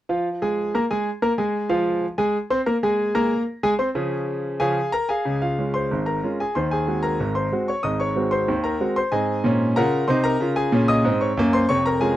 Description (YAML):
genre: ragtime piano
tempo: 93 BPM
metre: 2/4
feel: straight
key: Db major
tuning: A4 = 439 Hz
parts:
  - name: bright concert grand piano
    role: solo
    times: 0.1-12.2 s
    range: F1 to Eb6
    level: -20 LUFS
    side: equal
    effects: none
room: moderate booth ambience, RT60 0.2 s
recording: dry, close 1970s-style studio recording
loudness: -20 LUFS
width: side -13 dB against mid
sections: 0.1-5.3 A section; 5.3-12.2 B section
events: none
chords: 0.1 Db; 6.5 Ab7/Eb; 7.8 Ab7; 10.4 Db